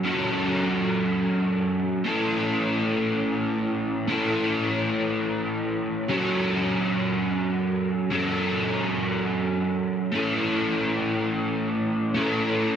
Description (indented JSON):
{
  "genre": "rock",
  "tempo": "free time",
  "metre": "none",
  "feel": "none",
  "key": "A major",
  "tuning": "A4 = 444 Hz",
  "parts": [
    { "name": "crunchy overdriven guitar", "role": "solo", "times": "0.0-12.8 s", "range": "F#3 to A4", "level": "-23 LUFS", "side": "equal", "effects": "ensemble chorus, slapback echo" }
  ],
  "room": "light reverb",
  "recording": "dense, heavily limited modern master",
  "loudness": "-23 LUFS",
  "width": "side -8 dB against mid",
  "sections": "0.0-12.8 A section",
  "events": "none",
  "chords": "0.0 F#m; 2.1 A; 6.1 F#m; 10.1 A"
}